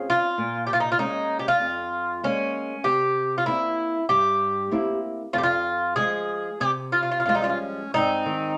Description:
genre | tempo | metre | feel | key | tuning
fado-style ballad | 96 BPM | 4/4 | rubato | F minor | A4 = 440 Hz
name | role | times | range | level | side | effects
Irish bouzouki | melody | 0.0-8.6 s | Db4 to Ab4 | -25 LUFS | equal | none
flamenco guitar | accompaniment | 0.0-8.6 s | F2 to F4 | -33 LUFS | equal | none
accordion | second line | 7.3-8.5 s | C4 to Db4 | -32 LUFS | equal | none
room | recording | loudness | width
moderate studio reverb, RT60 0.7 s | none | -24 LUFS | mono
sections
0.0-7.9 A section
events
none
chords
0.4 Bbm7; 2.8 C7; 5.3 Fmadd9; 7.9 Ab

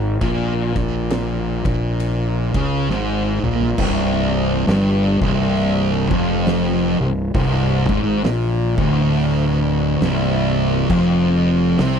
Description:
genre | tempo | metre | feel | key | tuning
stoner and doom metal | 68 BPM | 4/4 | swing 61% on 8ths | unclear | A4 = 440 Hz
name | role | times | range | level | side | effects
thick fuzz guitar | riff | 0.0-12.0 s | C2 to Db3 | -17 LUFS | equal | distortion
fuzz fingered electric bass | bass | 0.0-12.0 s | C1 to Db2 | -23 LUFS | equal | overdrive, tube saturation
oversized low-tuned drum kit | drums | 0.2-12.0 s | crash cymbal, hi-hat, kick drum, ride cymbal, snare drum, toms | -25 LUFS | equal | none
room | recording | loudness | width
little or no reverb | dry, close 1970s-style studio recording | -16 LUFS | side -7 dB against mid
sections
0.0-3.8 A section; 3.8-12.0 B section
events
drum fill 2.9-3.8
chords
0.0 Ab5; 3.8 C5; 10.9 F5

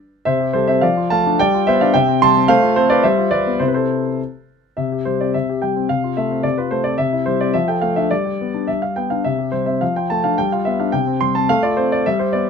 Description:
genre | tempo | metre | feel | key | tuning
classical-period piano sonatina | 102-112 BPM | 2/4 | rubato | C major | A4 = 440 Hz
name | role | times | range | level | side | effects
warm concert grand piano | solo | 0.3-12.5 s | C3 to C6 | -15 LUFS | equal | none
room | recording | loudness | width
little or no reverb | close, detailed microphones | -15 LUFS | side -6 dB against mid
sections
0.0-4.8 A section; 4.8-12.5 A section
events
none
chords
0.3 C; 0.8 Dm/F; 1.4 G7; 1.9 C; 2.5 F/A; 3.0 G7; 3.6 C; 4.8 C5; 5.9 F/C; 7.0 C; 7.5 Dm/F; 8.1 G; 9.3 C; 9.8 Dm/F; 10.4 G7; 10.9 C5; 11.5 F/A

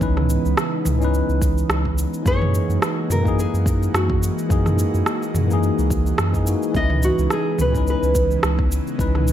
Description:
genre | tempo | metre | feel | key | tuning
sunset chillout | 107 BPM | 4/4 | swing 56% on 16ths | C# dorian | A4 = 440 Hz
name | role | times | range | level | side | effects
tine electric piano | accompaniment | 0.0-9.3 s | E3 to B4 | -25 LUFS | moving between left 6 dB and right 4 dB | auto-pan, digital delay
airy breathy pad | sustained chords | 0.0-9.3 s | C#3 to F#4 | -27 LUFS | right 1 dB | chorus
warm sub bass | bass | 0.0-9.3 s | C#2 to F#2 | -21 LUFS | equal | none
deep house drum kit | drums | 0.0-9.3 s | rim click, shaker, toms | -26 LUFS | right 1 dB | studio reverb
electronic kick drum | drums | 0.0-9.1 s | none | -23 LUFS | equal | studio reverb
nylon-string guitar | melody | 2.3-8.7 s | F#4 to D#5 | -25 LUFS | equal | ping-pong delay
room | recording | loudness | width
light reverb, digital ambience | none | -17 LUFS | side -11 dB against mid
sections
0.0-9.3 A section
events
none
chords
0.0 C#m9; 2.3 F#13; 6.7 C#m9

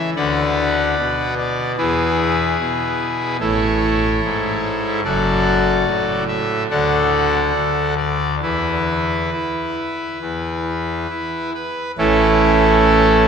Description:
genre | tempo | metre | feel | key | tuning
classical, chorale-style piece for pipe organ | 66-74 BPM | 4/4 | rubato | A major | A4 = 440 Hz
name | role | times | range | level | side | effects
pipe organ, trumpet | solo | 0.0-13.3 s | F#1 to F#5 | -16 LUFS | equal | none
room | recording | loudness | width
wet cathedral reverb, RT60 4.5 s | none | -16 LUFS | side -6 dB against mid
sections
0.0-12.0 A section; 12.0-13.3 B section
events
none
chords
0.2 Bm/D; 1.8 E; 3.4 A; 5.0 D/F#; 6.7 D; 8.4 N.C.; 12.0 A

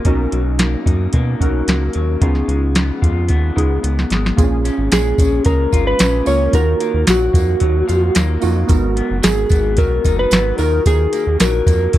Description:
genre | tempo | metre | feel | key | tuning
indie pop, bedroom pop | 111 BPM | 4/4 | straight | unclear | A4 = 440 Hz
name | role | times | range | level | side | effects
electric guitar through a small old amp | accompaniment | 0.0-12.0 s | G#2 to G#4 | -23 LUFS | left 5 dB | lush chorus, vibrato effect
warbly lo-fi synth keys | accompaniment | 0.0-12.0 s | A#3 to A#4 | -23 LUFS | right 4 dB | chorus, cassette tape
soft vintage rhythm box | drums | 0.0-12.0 s | hi-hat, kick drum, snare drum | -16 LUFS | equal | none
round analog bass | bass | 0.1-12.0 s | F#1 to B2 | -18 LUFS | equal | none
tambourine | percussion | 4.4-12.0 s | none | -33 LUFS | right 17 dB | none
electric slide guitar | melody | 4.9-12.0 s | F#4 to C#5 | -18 LUFS | equal | wide subtle chorus
room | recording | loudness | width
digital ambience | dry, close 1970s-style studio recording | -13 LUFS | side -14 dB against mid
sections
0.0-4.4 A section; 4.4-12.0 B section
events
drum fill 3.8-4.4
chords
0.1 Bmaj7; 2.2 C#7; 4.4 A#m7; 6.5 D#madd9; 8.7 G#m7; 10.6 D#madd9

